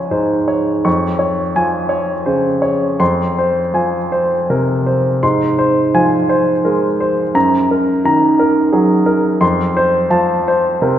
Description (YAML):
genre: classical, romantic nocturne for solo piano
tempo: 53-60 BPM (dotted quarters)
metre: 12/8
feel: rubato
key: unclear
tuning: A4 = 440 Hz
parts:
  - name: warm baby grand piano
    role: solo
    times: 0.0-11.0 s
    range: Db2 to Db6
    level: -12 LUFS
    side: equal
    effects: none
room: wet church reverb, RT60 3.3 s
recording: recorded in a church or concert hall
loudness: -12 LUFS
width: side -10 dB against mid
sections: 0.0-11.0 A section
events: none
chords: 0.0 Db; 0.9 Db/F; 3.0 Fm; 5.2 Fm/Ab; 7.4 Ebm/Gb; 9.4 F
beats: 0.87 1.92 | 3.00 4.12 5.22 6.30 | 7.35 8.39 9.42 10.46